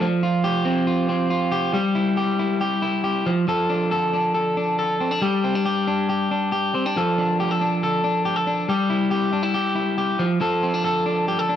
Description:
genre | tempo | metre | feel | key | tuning
indie pop | 138 BPM | 4/4 | straight | unclear | A4 = 440 Hz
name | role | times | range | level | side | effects
electric guitar at the edge of break-up | solo | 0.0-11.6 s | F3 to A4 | -19 LUFS | equal | spring reverb, slapback echo
room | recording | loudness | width
little or no reverb | dry, close 1970s-style studio recording | -19 LUFS | side -10 dB against mid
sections
0.0-1.7 A section; 1.7-11.6 B section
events
none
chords
0.0 Fsus2; 1.7 Em/G; 3.3 F6; 5.2 G5; 7.0 F6; 8.7 Em/G; 10.2 F6

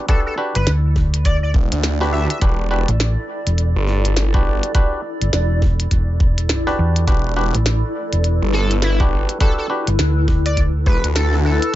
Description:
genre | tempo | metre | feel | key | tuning
glitch hop | 103 BPM | 4/4 | swing 61% on 16ths | E minor | A4 = 440 Hz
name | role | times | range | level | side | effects
clav | stabs | 0.0-9.9 s | D4 to B4 | -24 LUFS | equal | sidechain pumping, dub echo
granular cloud pad | texture | 0.0-11.8 s | E4 to D5 | -26 LUFS | left 1 dB | built-in reverb, sidechain pumping
sync lead | melody | 0.1-2.4, 8.5-11.8 s | E4 to E5 | -26 LUFS | equal | chorus, dub echo
electronic kick drum | drums | 0.1-11.0 s | none | -17 LUFS | equal | none
glitchy drum kit | drums | 0.1-11.7 s | hi-hat, snare drum | -24 LUFS | equal | none
hollow-body short-scale fingered electric bass | bass | 0.6-10.8 s | E1 to E2 | -17 LUFS | equal | none
phased detuned saw bass | bass | 1.5-11.6 s | E1 to D2 | -18 LUFS | equal | phaser, tube saturation
room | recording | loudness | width
little or no reverb | nothing above 7.7 kHz | -15 LUFS | side -14 dB against mid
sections
0.0-11.8 A section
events
none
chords
0.0 Em7

